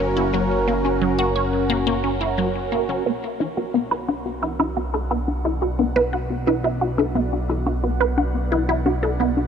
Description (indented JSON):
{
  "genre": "ambient, sequencer-driven space music",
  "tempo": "88 BPM",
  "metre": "4/4",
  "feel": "straight",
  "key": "B minor from 3.1 s",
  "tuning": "A4 = 442 Hz",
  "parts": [
    { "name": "phased analog pad", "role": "sustained chords", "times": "0.0-9.5 s", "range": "B2 to F#5", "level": "-26 LUFS", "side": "right 1 dB", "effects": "phaser, chorus" },
    { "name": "resonant blip pluck", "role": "riff", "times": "0.0-9.3 s", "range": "F#3 to F#5", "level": "-23 LUFS", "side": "equal", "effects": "phaser, ping-pong delay" },
    { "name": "fat analog bass", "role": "bass", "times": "0.0-9.5 s", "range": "F#1 to B1", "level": "-26 LUFS", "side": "equal", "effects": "none" },
    { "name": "soft round pluck", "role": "arpeggios", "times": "3.1-9.5 s", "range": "B3 to F#4", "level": "-27 LUFS", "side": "left 4 dB", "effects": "chorus, auto-pan, ping-pong delay" }
  ],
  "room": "moderate huge ambient reverb, RT60 8.1 s",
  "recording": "none",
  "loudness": "-19 LUFS",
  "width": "side -7 dB against mid",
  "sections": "0.0-3.1 A section; 3.1-9.5 B section",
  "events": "fade-in on analog synth pad 3.1-9.5; filter sweep on synth arpeggio sound 3.1-9.5",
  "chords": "0.0 F#; 3.1 Bm"
}